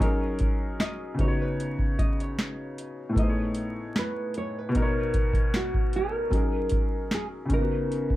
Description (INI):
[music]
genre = lo-fi hip hop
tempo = 76 BPM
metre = 4/4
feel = swing 56% on 16ths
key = F# major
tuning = A4 = 440 Hz
[part]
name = nylon-string guitar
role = melody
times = 0.0-8.2 s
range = F#4 to D#5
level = -32 LUFS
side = right 2 dB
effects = low-pass filter, tape echo
[part]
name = felt-muted upright piano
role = accompaniment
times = 0.0-8.2 s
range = A2 to C#5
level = -29 LUFS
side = left 1 dB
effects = cassette tape, low-pass filter
[part]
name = booming analog drum machine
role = drums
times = 0.0-8.2 s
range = hi-hat, kick drum, snare drum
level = -26 LUFS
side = equal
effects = vintage 12-bit sampler grit
[sound]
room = light reverb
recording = dark, warm production, vinyl crackle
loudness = -24 LUFS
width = side -16 dB against mid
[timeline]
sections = 0.0-8.2 A section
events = none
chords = 0.0 F#6; 1.2 C#7sus4; 3.2 Amaj9#11; 4.7 Bmaj9; 6.3 F#6; 7.5 C#7sus4